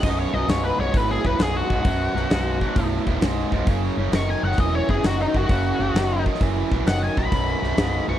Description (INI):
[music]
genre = blues rock power trio and southern rock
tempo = 132 BPM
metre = 4/4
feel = swing 67% on 8ths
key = B major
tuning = A4 = 440 Hz
[part]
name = octave-fuzz lead guitar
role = melody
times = 0.0-8.2 s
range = D#4 to C#6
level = -26 LUFS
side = left 3 dB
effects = wah, distortion
[part]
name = tight distorted guitar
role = riff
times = 0.0-8.2 s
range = B1 to E3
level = -24 LUFS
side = right 2 dB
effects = distortion
[part]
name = vintage muted fingered electric bass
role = bass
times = 0.0-8.2 s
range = B0 to A#1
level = -25 LUFS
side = equal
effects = none
[part]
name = huge arena drum kit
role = drums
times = 0.0-7.9 s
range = crash cymbal, hi-hat, kick drum, snare drum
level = -25 LUFS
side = equal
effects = none
[sound]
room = small room reverb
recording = dry, close 1970s-style studio recording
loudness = -19 LUFS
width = side -11 dB against mid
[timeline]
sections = 0.0-8.2 A section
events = lead electric guitar solo 0.0-8.2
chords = 0.0 B5; 3.7 F#5; 7.3 B5